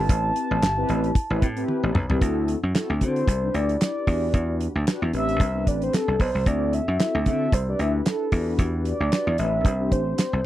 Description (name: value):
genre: early-eighties boogie funk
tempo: 113 BPM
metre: 4/4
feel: swing 56% on 16ths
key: A dorian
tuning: A4 = 437 Hz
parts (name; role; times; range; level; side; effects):
- mellow horn-like synth lead; melody; 0.0-10.5 s; A4 to A5; -27 LUFS; equal; chorus, slapback echo
- mellow synth brass; accompaniment; 0.0-10.4 s; B3 to C5; -28 LUFS; left 2 dB; chorus
- dry thumbed slap bass; bass; 0.0-10.4 s; G1 to D3; -24 LUFS; equal; none
- damped 70s drum kit; drums; 0.1-10.3 s; handclaps, hi-hat, kick drum, snare drum, toms; -22 LUFS; equal; none
room: little or no reverb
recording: dry, close 1970s-style studio recording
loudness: -21 LUFS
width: side -14 dB against mid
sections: 0.0-2.2 A section; 2.2-10.5 B section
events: drum fill 1.7-2.2; soft synth lead solo 2.2-10.5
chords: 0.0 Am7; 2.2 D9; 3.3 Cmaj9; 4.1 Em7; 5.1 Am11; 6.5 D9; 7.5 Cmaj9; 8.3 Em7; 9.4 Am11